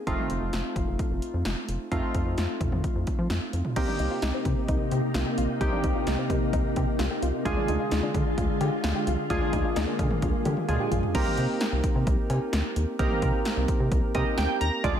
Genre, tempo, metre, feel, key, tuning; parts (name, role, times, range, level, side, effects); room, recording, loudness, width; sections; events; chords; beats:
synth-pop; 130 BPM; 4/4; straight; C minor; A4 = 440 Hz
warm analog keys; accompaniment; 0.0-15.0 s; Ab3 to Bb5; -30 LUFS; right 2 dB; chorus
rubbery square bass; bass; 0.1-14.9 s; F1 to F3; -28 LUFS; equal
punchy analog drum machine; drums; 0.1-15.0 s; cowbell, crash cymbal, hi-hat, kick drum, snare drum, toms; -29 LUFS; equal; overdrive
soft string machine; sustained chords; 3.8-11.1 s; C3 to F4; -30 LUFS; left 1 dB; ensemble chorus
soft round pluck; arpeggios; 3.8-11.1 s; C4 to G4; -34 LUFS; left 4 dB; chorus, ping-pong delay
light reverb, digital ambience; -24 LUFS; side -9 dB against mid
0.0-3.8 A section; 3.8-11.1 B section; 11.1-15.0 C section
drum fill 10.2-11.1; synth keys fill 13.9-14.8
0.1 F7; 3.8 Cm7; 7.5 Ddim; 11.1 Cm7
| 0.07 0.53 0.99 1.46 | 1.92 2.38 2.84 3.30 | 3.76 4.22 4.69 5.15 | 5.61 6.07 6.53 6.99 | 7.46 7.92 8.38 8.84 | 9.30 9.76 10.22 10.69 | 11.15 11.61 12.07 12.53 | 12.99 13.46 13.92 14.38 | 14.84